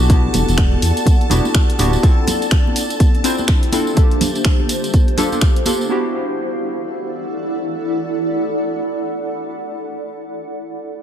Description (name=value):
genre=deep house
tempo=124 BPM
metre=4/4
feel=swing 60% on 16ths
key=E minor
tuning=A4 = 440 Hz
part: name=warm analog keys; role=stabs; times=0.0-10.1 s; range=Bb3 to C5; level=-22 LUFS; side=left 1 dB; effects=chorus, sidechain pumping, dub echo
part: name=smooth synth bass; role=bass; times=0.0-2.0 s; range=D1 to E2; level=-16 LUFS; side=equal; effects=sidechain pumping
part: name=tambourine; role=percussion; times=0.0-5.9 s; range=none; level=-28 LUFS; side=right 3 dB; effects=none
part: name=granular cloud pad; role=texture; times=0.0-10.3 s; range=D4 to F#5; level=-23 LUFS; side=equal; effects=built-in reverb, sidechain pumping
part: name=string machine, violins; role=texture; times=0.0-5.9 s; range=A5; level=-29 LUFS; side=equal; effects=ensemble chorus, sidechain pumping
part: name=electronic kick drum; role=drums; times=0.1-5.5 s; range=none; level=-14 LUFS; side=equal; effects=none
part: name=punchy analog drum machine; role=drums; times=0.1-5.8 s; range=finger snaps, hi-hat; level=-23 LUFS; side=left 1 dB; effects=none
part: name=congas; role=percussion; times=0.3-5.8 s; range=none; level=-26 LUFS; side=right 4 dB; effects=none
room=light reverb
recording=none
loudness=-14 LUFS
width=side -9 dB against mid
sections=0.0-5.9 A section; 5.9-9.8 B section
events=none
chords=0.0 Em9; 2.0 Dm9; 4.0 Gm9; 5.9 Em9